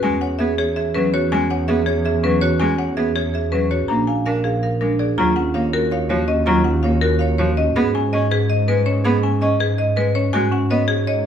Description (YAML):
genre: classical, minimalist pattern music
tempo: 326 BPM (eighths)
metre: 7/8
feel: straight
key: Eb minor from 5.2 s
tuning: A4 = 439 Hz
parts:
  - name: buzzing marimba with hard mallets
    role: melody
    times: 0.0-11.3 s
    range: G#4 to Cb6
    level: -22 LUFS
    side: left 6 dB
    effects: none
  - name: clear cello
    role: accompaniment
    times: 0.0-10.8 s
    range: F3 to D4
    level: -24 LUFS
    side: equal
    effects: none
  - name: marimba with hard mallets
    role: arpeggios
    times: 0.0-11.3 s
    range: C#4 to E#5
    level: -22 LUFS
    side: right 4 dB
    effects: none
  - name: rich chamber double bass section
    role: bass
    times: 0.0-11.3 s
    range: A#1 to Ab2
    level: -21 LUFS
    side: right 1 dB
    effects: none
room: wet large studio reverb, RT60 0.9 s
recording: heard from further back in the room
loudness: -16 LUFS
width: side -8 dB against mid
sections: 0.0-5.2 A section; 5.2-11.3 B section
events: none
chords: 0.0 C#m/E; 3.9 A#7; 5.2 Ebm7; 7.8 Abm; 10.3 Db7sus4/Ab